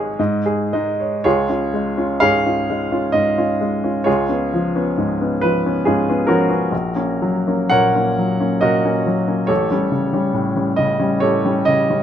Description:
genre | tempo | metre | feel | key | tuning
classical, romantic character piece for solo piano | 54-71 BPM | 3/4 | rubato | Db major | A4 = 438 Hz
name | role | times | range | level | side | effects
clear baby grand piano | solo | 0.0-12.0 s | Ab1 to Gb5 | -16 LUFS | equal | none
room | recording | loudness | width
light reverb | close, detailed microphones | -16 LUFS | side -9 dB against mid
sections
0.0-1.2 A section; 1.2-12.0 B section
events
none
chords
0.2 Ab5; 1.2 Db; 4.1 Db7; 6.7 Gb/Bb; 9.5 A7

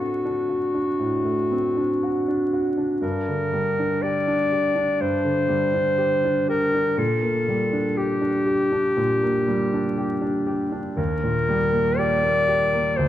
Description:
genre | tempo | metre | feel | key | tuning
classical, romantic duo for clarinet and grand piano | 60 BPM | 4/4 | rubato | G minor | A4 = 437 Hz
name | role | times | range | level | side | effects
clear clarinet | melody | 0.0-13.1 s | F#4 to D5 | -22 LUFS | left 1 dB | none
clear concert grand piano | accompaniment | 0.0-13.1 s | D2 to G4 | -24 LUFS | right 1 dB | none
room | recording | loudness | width
wet scoring stage reverb, RT60 1.9 s | dark, warm production, vinyl crackle | -20 LUFS | side -12 dB against mid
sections
0.0-13.1 A section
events
none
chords
0.0 D7/A; 3.0 Gm; 7.0 Gm/Bb; 11.0 Eb

